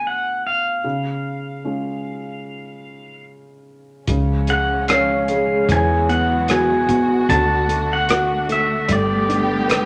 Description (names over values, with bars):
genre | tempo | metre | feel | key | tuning
acoustic folk-pop ballad | 75 BPM | 4/4 | straight | unclear | A4 = 440 Hz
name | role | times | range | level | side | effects
pedal steel guitar | melody | 0.0-9.9 s | D5 to A5 | -24 LUFS | equal | none
warm grand piano | accompaniment | 0.0-9.9 s | B2 to B4 | -26 LUFS | equal | none
dark chamber string section | sustained chords | 4.1-9.9 s | D3 to G4 | -28 LUFS | equal | none
vintage muted fingered electric bass | bass | 4.1-9.9 s | G1 to E2 | -27 LUFS | equal | none
cloth-damped thuddy drum kit | drums | 4.1-9.9 s | hi-hat, kick drum, rim click | -25 LUFS | equal | none
vibraphone with medium hard mallets | arpeggios | 4.9-9.9 s | F#4 to C#5 | -24 LUFS | equal | none
room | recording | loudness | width
wet studio reverb, RT60 0.9 s | none | -19 LUFS | mono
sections
0.0-4.1 A section; 4.1-9.9 B section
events
none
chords
0.0 Bm7; 0.8 C#; 5.7 Eadd9; 7.3 D; 8.9 Gadd9